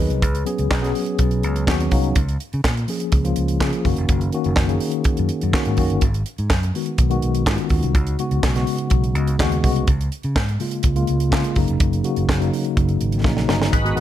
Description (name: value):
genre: disco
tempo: 124 BPM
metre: 4/4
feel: straight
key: unclear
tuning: A4 = 440 Hz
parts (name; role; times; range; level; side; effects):
- mellow tine electric piano; accompaniment; 0.0-14.0 s; C#3 to E#5; -22 LUFS; left 2 dB; medium stereo tremolo
- fingered electric bass; bass; 0.0-14.0 s; E#1 to C#3; -22 LUFS; equal; none
- tight funk drum kit; drums; 0.1-14.0 s; handclaps, hi-hat, kick drum, snare drum; -21 LUFS; right 1 dB; none
- overdriven tonewheel organ; sustained chords; 13.7-14.0 s; G#3 to B4; -22 LUFS; equal; chorus vibrato, slow rotary speaker
room: studio ambience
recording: none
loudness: -17 LUFS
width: side -12 dB against mid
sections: 0.0-13.7 A section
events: tine electric piano fill 1.4-2.2; drum fill 13.3-13.7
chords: 0.2 C#7sus4; 2.2 A#m7/C#; 3.8 F#6; 6.0 G#m7; 8.0 C#7sus4; 9.9 A#m7/C#; 11.6 F#6